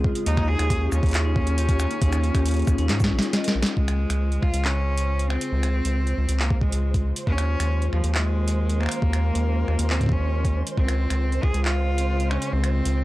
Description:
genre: IDM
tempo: 137 BPM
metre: 4/4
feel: straight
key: Db major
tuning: A4 = 439 Hz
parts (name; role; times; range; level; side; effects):
- warbly tape-like pad; sustained chords; 0.0-13.0 s; Db3 to C5; -32 LUFS; left 2 dB; chorus, built-in reverb
- vibraphone with medium hard mallets; arpeggios; 0.0-3.6 s; Bb3 to Eb5; -33 LUFS; left 2 dB; analog delay
- round analog bass; bass; 0.0-13.0 s; Bb1 to Ab2; -22 LUFS; equal; none
- electronic kick drum; drums; 0.0-11.5 s; none; -24 LUFS; equal; none
- booming analog drum machine; drums; 0.2-12.9 s; finger snaps, handclaps, hi-hat, shaker, snare drum; -28 LUFS; equal; overdrive
- bright cello; melody; 0.3-13.0 s; F3 to Ab4; -30 LUFS; equal; tape echo
- flickering grainy texture; texture; 4.1-13.0 s; C5; -37 LUFS; right 2 dB; built-in reverb, sidechain pumping
room: little or no reverb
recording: dry, gritty hardware recording, transformer saturation, cassette tape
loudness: -20 LUFS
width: side -17 dB against mid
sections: 0.0-3.8 A section; 3.8-13.0 B section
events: drum fill 2.9-3.8; kick drops out 3.3-3.8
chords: 0.3 Eb9sus4; 3.8 Dbmaj7; 7.3 Eb9sus4; 10.8 Dbmaj7

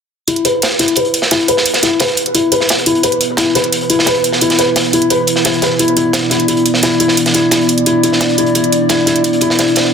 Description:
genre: dark technical drum and bass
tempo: 174 BPM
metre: 4/4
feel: straight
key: unclear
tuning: A4 = 442 Hz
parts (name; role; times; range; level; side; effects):
- dark analog pad; sustained chords; 0.3-9.9 s; B3 to D5; -17 LUFS; right 2 dB; chorus
- felt-muted upright piano; arpeggios; 0.3-9.7 s; E4 to B4; -14 LUFS; left 2 dB; low-pass filter, dub echo
- crunchy breakbeat drum kit; drums; 0.3-9.9 s; hi-hat, snare drum; -17 LUFS; right 1 dB; high-pass filter on hats, high-pass filter on snare, high-pass filter on room
- electronic hi-hat; drums; 0.3-9.8 s; none; -16 LUFS; right 2 dB; overdrive
room: moderate plate reverb, RT60 1.1 s, studio reverb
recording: dense, heavily limited modern master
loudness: -10 LUFS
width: side -6 dB against mid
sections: 0.3-9.9 A section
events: filter sweep on felt piano 0.3-9.9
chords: 0.3 E5

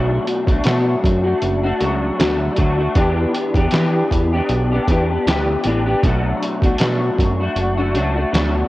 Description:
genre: indie pop, bedroom pop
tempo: 78 BPM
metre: 4/4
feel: swing 55% on 16ths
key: B minor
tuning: A4 = 441 Hz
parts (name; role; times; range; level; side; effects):
- electric guitar through a small old amp; accompaniment; 0.0-8.7 s; B2 to G4; -18 LUFS; left 1 dB; ensemble chorus, vibrato effect, cassette tape
- fat analog bass; bass; 0.0-8.6 s; F#1 to E3; -20 LUFS; equal; none
- lo-fi sampler-style drum kit; drums; 0.3-8.5 s; hi-hat, kick drum, snare drum; -20 LUFS; equal; cassette tape
room: digital ambience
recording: home recording on cassette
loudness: -15 LUFS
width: side -17 dB against mid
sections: 0.0-8.7 A section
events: none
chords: 0.0 Bm7; 3.0 Em7; 6.0 Bm7

